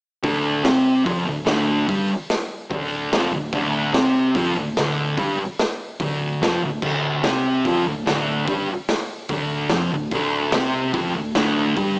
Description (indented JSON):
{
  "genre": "garage rock duo or trio",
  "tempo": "146 BPM",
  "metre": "4/4",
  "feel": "straight",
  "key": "D minor",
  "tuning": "A4 = 440 Hz",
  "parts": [
    { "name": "thick fuzz guitar", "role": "riff", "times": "0.2-12.0 s", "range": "D2 to C4", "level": "-20 LUFS", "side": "equal", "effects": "distortion, cassette tape" },
    { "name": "hollow-body short-scale fingered electric bass", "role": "bass", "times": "0.2-12.0 s", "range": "D1 to C2", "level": "-36 LUFS", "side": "equal", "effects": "none" },
    { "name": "raw garage drum kit", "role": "drums", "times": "0.2-11.9 s", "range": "crash cymbal, hi-hat, kick drum, snare drum", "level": "-24 LUFS", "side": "equal", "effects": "none" }
  ],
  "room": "light reverb, small room ambience",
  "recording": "home recording on cassette, small speaker sound",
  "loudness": "-19 LUFS",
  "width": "side -37 dB against mid",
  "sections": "0.2-12.0 A section",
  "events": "none",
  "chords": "0.2 Dm",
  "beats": "| 0.24 0.65 1.06 1.47 | 1.88 2.29 2.71 3.12 | 3.53 3.94 4.35 4.76 | 5.17 5.58 6.00 6.41 | 6.82 7.23 7.64 8.05 | 8.46 8.88 9.29 9.70 | 10.11 10.52 10.93 11.34 | 11.76"
}